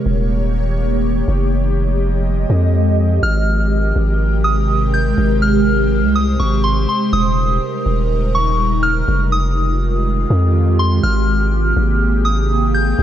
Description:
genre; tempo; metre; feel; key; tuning
hip hop, atmospheric cloud-rap; 123 BPM; 4/4; half-time; Ab major; A4 = 444 Hz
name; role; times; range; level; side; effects
ethereal airy pad; sustained chords; 0.0-13.0 s; C3 to Eb5; -19 LUFS; right 1 dB; ensemble chorus, built-in reverb, phaser
long sustained 808-style bass; bass; 0.1-13.0 s; Eb1 to F2; -16 LUFS; equal; none
soft synth bell; melody; 3.2-13.0 s; C6 to G6; -20 LUFS; equal; chorus, phaser, low-pass filter, ping-pong delay
room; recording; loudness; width
light reverb, digital ambience; none; -14 LUFS; side -11 dB against mid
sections
0.0-3.2 A section; 3.2-13.0 B section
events
none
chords
0.0 Eb7; 1.3 Fm9; 3.2 Abmaj9; 7.1 Eb7; 9.1 Fm9; 11.0 Abmaj9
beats
0.30 0.79 | 1.28 1.76 2.25 2.74 | 3.23 3.72 4.20 4.69 | 5.18 5.67 6.16 6.64 | 7.13 7.62 8.11 8.59 | 9.08 9.57 10.06 10.55 | 11.03 11.52 12.01 12.50 | 12.98

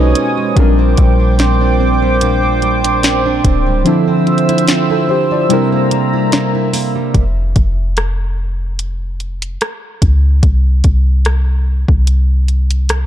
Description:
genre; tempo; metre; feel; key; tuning
contemporary R&B; 73 BPM; 4/4; swing 54% on 16ths; unclear; A4 = 440 Hz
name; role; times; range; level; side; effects
muted felt-like synth keys; accompaniment; 0.0-7.2 s; F3 to D5; -16 LUFS; left 2 dB; chorus
warm analog pad; sustained chords; 0.0-7.1 s; C5 to E6; -18 LUFS; left 1 dB; chorus
fingerpicked plugged-in steel-string acoustic guitar; arpeggios; 0.0-7.7 s; Bb2 to E4; -17 LUFS; right 8 dB; ping-pong delay
soft 808-style bass; bass; 0.0-13.1 s; D1 to Db2; -13 LUFS; equal; none
smooth R&B drum kit; drums; 0.2-13.1 s; hi-hat, kick drum, rim click, snare drum; -15 LUFS; equal; none
room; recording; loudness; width
digital ambience; dark, warm production; -11 LUFS; side -11 dB against mid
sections
0.0-7.1 A section; 7.1-13.1 B section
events
kick muted 3.9-7.1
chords
0.0 B69; 0.6 Bb69; 3.9 Dm9; 5.5 C7; 7.1 N.C.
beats
| 0.57 1.39 2.21 3.03 | 3.85 4.68 5.50 6.32 | 7.14 7.96 8.79 9.61 | 10.43 11.25 12.07 12.90

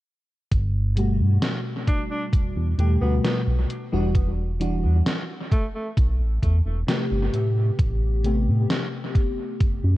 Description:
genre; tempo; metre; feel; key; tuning
vaporwave; 66 BPM; 4/4; straight; G major; A4 = 440 Hz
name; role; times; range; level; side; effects
chorused synth bass; bass; 0.5-10.0 s; E1 to A2; -21 LUFS; equal; tube saturation
electronic kick drum; drums; 0.5-9.8 s; none; -22 LUFS; equal; vintage 12-bit sampler grit
gated 80s digital drum machine; drums; 0.5-9.8 s; hi-hat, snare drum; -28 LUFS; equal; gated reverb, gated reverb snare, vintage 12-bit sampler grit, analog delay
FM electric piano with soft pad layer; accompaniment; 1.0-10.0 s; B2 to G4; -27 LUFS; left 1 dB; lush chorus, analog delay
breathy alto saxophone; melody; 1.9-5.9 s; A3 to D4; -34 LUFS; equal; tape echo
room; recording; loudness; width
digital ambience; echo-heavy mix, cassette tape; -20 LUFS; side -17 dB against mid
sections
0.5-10.0 A section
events
none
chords
0.5 Gmaj9; 3.7 Em9; 7.3 Am9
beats
| 0.52 1.43 2.33 3.24 | 4.15 5.06 5.97 6.88 | 7.79 8.70 9.61

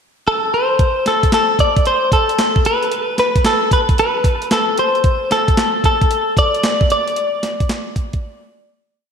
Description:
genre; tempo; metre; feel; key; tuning
R&B, new jack swing; 113 BPM; 4/4; swing 66% on 16ths; unclear; A4 = 439 Hz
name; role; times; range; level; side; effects
direct-recorded clean electric guitar; melody; 0.3-8.7 s; A4 to D5; -15 LUFS; left 1 dB; analog chorus, tape echo
crisp 8-bit digital drum machine; drums; 0.8-8.2 s; handclaps, hi-hat, kick drum, snare drum; -18 LUFS; right 1 dB; none
room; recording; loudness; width
wet plate reverb, RT60 2.4 s; dreamy mix soaked in reverb; -13 LUFS; side -6 dB against mid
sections
0.0-0.8 pickup bar; 0.8-9.1 breakdown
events
fade-out 7.2-9.1; break 8.2-9.1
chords
none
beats
0.26 | 0.79 1.32 1.85 2.38 | 2.92 3.45 3.98 4.51 | 5.04 5.57 6.10 6.63 | 7.16 7.70 8.23

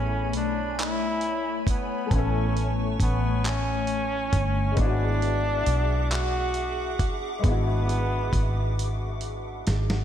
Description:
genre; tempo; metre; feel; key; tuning
slow six-eight R&B; 45 BPM (dotted quarters); 6/8; straight; A major; A4 = 441 Hz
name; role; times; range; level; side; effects
clear flugelhorn; melody; 0.0-9.2 s; B3 to F#4; -30 LUFS; equal; tape echo
clear grand piano; accompaniment; 0.0-10.0 s; G#3 to C#5; -34 LUFS; left 4 dB; ensemble chorus
hollow soft pad; sustained chords; 0.0-10.0 s; A3 to D6; -32 LUFS; left 2 dB; ensemble chorus
vintage muted fingered electric bass; bass; 0.0-10.0 s; G1 to B1; -26 LUFS; equal; none
dusty soul sampler-style drum kit; drums; 0.3-10.0 s; handclaps, hi-hat, kick drum, snare drum; -27 LUFS; equal; none
room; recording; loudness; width
moderate lush hall reverb, RT60 2.3 s; dreamy mix soaked in reverb; -23 LUFS; side -10 dB against mid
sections
0.0-10.0 A section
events
drum fill 8.8-10.0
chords
0.0 Amaj9; 4.8 E9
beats
0.77 | 2.10 3.44 | 4.77 6.11 | 7.44 8.77

